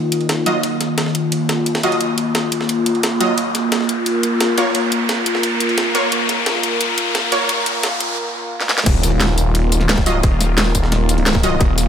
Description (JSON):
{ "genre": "dark technical drum and bass", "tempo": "175 BPM", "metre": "4/4", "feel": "straight", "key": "unclear", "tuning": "A4 = 440 Hz", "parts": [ { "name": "sweeping resonant pad", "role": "sustained chords", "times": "0.0-11.9 s", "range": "Eb3 to Bb4", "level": "-20 LUFS", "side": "left 1 dB", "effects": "chorus, sidechain pumping" }, { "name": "riser and impact", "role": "sound effects", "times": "0.1-10.2 s", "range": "none", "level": "-23 LUFS", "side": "left 1 dB", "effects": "none" }, { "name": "breakbeat sampler-style drum kit", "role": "drums", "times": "0.1-11.9 s", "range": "ride cymbal, snare drum", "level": "-25 LUFS", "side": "right 1 dB", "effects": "high-pass filter on cymbals, high-pass filter on snare" }, { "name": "drum and bass drum kit", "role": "drums", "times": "0.1-11.8 s", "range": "crash cymbal, hi-hat, snare drum, tambourine", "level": "-20 LUFS", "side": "left 1 dB", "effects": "overdrive" }, { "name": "orchestra-hit-like synth stab", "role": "stabs", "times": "0.5-7.4, 10.1-11.6 s", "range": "Gb3 to Eb5", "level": "-22 LUFS", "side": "right 1 dB", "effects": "built-in reverb, tape echo" }, { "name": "snarling distorted saw bass", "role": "bass", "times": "8.9-11.9 s", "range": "Eb1", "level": "-17 LUFS", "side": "equal", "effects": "distortion, overdrive" }, { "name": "electronic kick drum", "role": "drums", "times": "8.9-11.7 s", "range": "none", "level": "-16 LUFS", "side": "equal", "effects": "overdrive" } ], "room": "moderate lush hall reverb, RT60 2.0 s", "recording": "high-pass filter", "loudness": "-15 LUFS", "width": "side -8 dB against mid", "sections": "0.0-8.9 A section; 8.9-11.9 B section", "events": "build-up 0.0-8.9; filter sweep on analog synth pad 0.0-8.9; filter sweep 0.0-8.9; riser 0.1-8.2; drum fill 8.6; drop 8.9-11.9; impact 8.9-10.2", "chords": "0.0 Ebmadd9; 3.4 Bbm; 8.9 Ebmadd9", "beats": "0.29 | 0.64 0.98 1.32 1.66 | 2.01 2.35 2.69 3.04 | 3.38 3.72 4.06 4.41 | 4.75 5.09 5.43 5.78 | 6.12 6.46 6.81 7.15 | 7.49 7.83 8.18 8.52 | 8.86 9.21 9.55 9.89 | 10.23 10.58 10.92 11.26 | 11.61" }